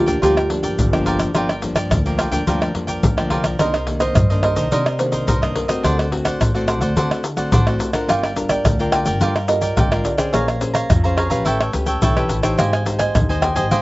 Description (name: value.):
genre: samba and choro.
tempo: 107 BPM.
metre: 4/4.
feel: straight.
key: G minor, C minor from 3.6 s.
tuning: A4 = 437 Hz.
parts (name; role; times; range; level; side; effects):
kalimba; melody; 0.0-13.8 s; G4 to G5; -22 LUFS; right 1 dB; slapback echo.
cavaquinho; accompaniment; 0.0-13.8 s; D4 to Bb5; -24 LUFS; right 1 dB; slapback echo.
nylon-string guitar; accompaniment; 0.0-13.8 s; G2 to C5; -24 LUFS; left 2 dB; slapback echo.
upright bass; bass; 0.0-13.8 s; G1 to D3; -23 LUFS; equal; none.
tube shaker, surdo, pandeiro and tamborim; percussion; 0.1-13.8 s; none; -20 LUFS; equal; none.
room: little or no reverb.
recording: recorded outdoors, with no room sound, nothing above 7.8 kHz.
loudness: -16 LUFS.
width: side -19 dB against mid.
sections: 0.0-3.6 A section; 3.6-13.8 B section.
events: none.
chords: 0.0 Gm7; 3.6 Cm9; 5.8 D7; 8.1 Gm7; 10.3 Bbm9; 11.5 A9; 12.6 Abmaj7.